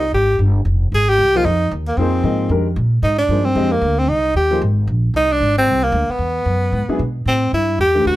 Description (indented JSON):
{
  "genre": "modal jazz",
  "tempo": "227 BPM",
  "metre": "4/4",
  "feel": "swing 60% on 8ths",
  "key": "F dorian",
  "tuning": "A4 = 440 Hz",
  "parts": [
    { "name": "clear tenor saxophone", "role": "melody", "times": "0.0-8.2 s", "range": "Bb3 to Ab4", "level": "-16 LUFS", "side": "equal", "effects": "none" },
    { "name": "upright bass", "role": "bass", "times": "0.0-8.2 s", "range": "F1 to B2", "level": "-18 LUFS", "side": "equal", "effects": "none" },
    { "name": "warm baby grand piano", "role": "accompaniment", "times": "1.4-4.6, 6.9-8.2 s", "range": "Eb3 to Eb5", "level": "-22 LUFS", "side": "left 2 dB", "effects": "none" }
  ],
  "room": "little or no reverb",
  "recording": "none",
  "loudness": "-14 LUFS",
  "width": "side -16 dB against mid",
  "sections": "0.0-7.3 A section",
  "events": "none",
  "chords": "0.0 Fm9; 6.2 E; 7.3 Am11"
}